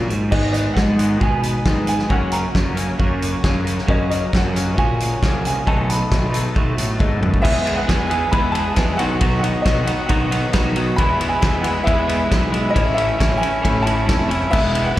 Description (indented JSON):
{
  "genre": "indie rock",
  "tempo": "135 BPM",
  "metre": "4/4",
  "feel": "straight",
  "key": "B major",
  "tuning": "A4 = 438 Hz",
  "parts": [
    { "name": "crunchy overdriven guitar", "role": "riff", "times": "0.0-15.0 s", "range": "F#2 to E4", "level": "-25 LUFS", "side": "left 6 dB", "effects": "slapback echo" },
    { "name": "overdriven electric guitar", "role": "riff", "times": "0.0-15.0 s", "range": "E2 to G#4", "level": "-25 LUFS", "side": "right 5 dB", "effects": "lush chorus, slapback echo" },
    { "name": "fuzz picked electric bass", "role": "bass", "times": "0.0-15.0 s", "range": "E1 to B2", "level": "-21 LUFS", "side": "equal", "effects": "overdrive" },
    { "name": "loose indie drum kit", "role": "drums", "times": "0.1-15.0 s", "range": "crash cymbal, hi-hat, kick drum, ride cymbal, snare drum, toms", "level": "-21 LUFS", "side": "equal", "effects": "none" },
    { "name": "clear upright piano", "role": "melody", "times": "0.3-15.0 s", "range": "D#5 to B5", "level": "-24 LUFS", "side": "equal", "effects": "slapback echo" },
    { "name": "analog string pad", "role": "sustained chords", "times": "0.3-15.0 s", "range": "F#4 to C#6", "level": "-34 LUFS", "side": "left 1 dB", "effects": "none" }
  ],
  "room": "little or no reverb",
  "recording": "live gig heard through the venue's PA, recital hall reverb",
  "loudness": "-16 LUFS",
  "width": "side -14 dB against mid",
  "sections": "0.3-7.4 A section; 7.4-15.0 B section",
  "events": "drum fill 7.0-7.4",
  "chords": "0.3 G#m; 2.1 F#; 5.7 B7; 7.4 E; 9.0 Badd9; 11.0 E; 12.8 A"
}